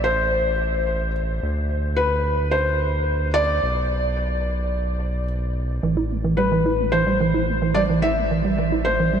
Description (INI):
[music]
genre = IDM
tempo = 109 BPM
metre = 4/4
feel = straight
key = unclear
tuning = A4 = 440 Hz
[part]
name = felt-muted upright piano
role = melody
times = 0.0-9.2 s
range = B4 to E5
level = -22 LUFS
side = left 1 dB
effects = analog delay
[part]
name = round analog bass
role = bass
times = 0.0-9.2 s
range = A1 to D2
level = -24 LUFS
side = equal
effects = none
[part]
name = deep acid bass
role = arpeggios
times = 5.8-9.2 s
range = E3 to E4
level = -21 LUFS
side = right 4 dB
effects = cassette tape, ping-pong delay
[sound]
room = wet huge ambient reverb, RT60 7.1 s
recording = dreamy mix soaked in reverb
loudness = -19 LUFS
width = side -8 dB against mid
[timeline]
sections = 0.0-9.2 A section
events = none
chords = 0.0 Am; 1.4 Bm/D; 3.6 Bm; 5.8 Am7